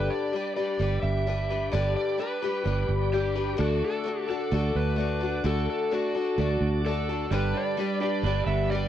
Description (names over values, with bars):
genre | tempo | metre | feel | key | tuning
folk rock and heartland rock | 129 BPM | 4/4 | straight | G major | A4 = 440 Hz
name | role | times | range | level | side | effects
overdriven slide guitar | melody | 0.0-8.9 s | F#4 to E5 | -31 LUFS | right 2 dB | cassette tape
picked old ladder-braced acoustic guitar | accompaniment | 0.0-8.9 s | G2 to B4 | -29 LUFS | left 6 dB | cassette tape
tonewheel organ | sustained chords | 0.0-8.9 s | D4 to D5 | -38 LUFS | right 2 dB | slow rotary speaker, cassette tape
fingered electric bass | bass | 0.0-8.9 s | G1 to D2 | -27 LUFS | right 2 dB | transformer saturation
electric guitar through a small old amp | riff | 7.3-8.9 s | G3 to B4 | -31 LUFS | right 10 dB | cassette tape
room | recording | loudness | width
light reverb | home recording on cassette, nothing above 10.9 kHz | -24 LUFS | side -10 dB against mid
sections
0.0-8.9 A section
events
none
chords
0.0 G; 3.6 D; 7.3 G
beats
0.33 0.80 1.26 | 1.73 2.19 2.66 3.12 | 3.59 4.05 4.52 4.98 | 5.45 5.91 6.38 6.84 | 7.31 7.77 8.24 8.70